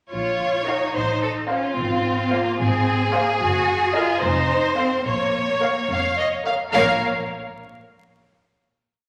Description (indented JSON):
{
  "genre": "cinematic, playful, whimsical film cue",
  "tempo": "73 BPM (dotted quarters)",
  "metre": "6/8",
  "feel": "straight",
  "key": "Bb minor",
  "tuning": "A4 = 440 Hz",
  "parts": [
    { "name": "clear studio violin section", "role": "second line", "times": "0.1-7.0 s", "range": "F4 to Db5", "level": "-25 LUFS", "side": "equal", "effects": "none" },
    { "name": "rich studio cello section", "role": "bass", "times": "0.1-7.0 s", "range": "Bb3 to Gb4", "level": "-28 LUFS", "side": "equal", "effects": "none" },
    { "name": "warm studio double bass section", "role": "bass", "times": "0.1-7.0 s", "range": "F1 to Bb1", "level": "-30 LUFS", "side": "equal", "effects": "none" },
    { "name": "dark studio violin section", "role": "melody", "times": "0.7-7.0 s", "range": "Eb5 to F5", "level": "-27 LUFS", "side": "equal", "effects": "none" },
    { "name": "rich studio viola section", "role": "accompaniment", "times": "0.7-7.0 s", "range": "A4 to Eb5", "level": "-32 LUFS", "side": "equal", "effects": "none" }
  ],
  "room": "wet scoring stage reverb, RT60 1.6 s",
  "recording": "vinyl crackle",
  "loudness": "-21 LUFS",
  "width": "mono",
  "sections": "0.1-6.7 A section; 6.7-8.4 final chord",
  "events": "none",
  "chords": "0.1 Bbm; 1.0 F/A; 1.8 Fm/Ab; 3.4 Ebm/Gb; 4.2 F7; 5.1 Bbm; 6.7 N.C."
}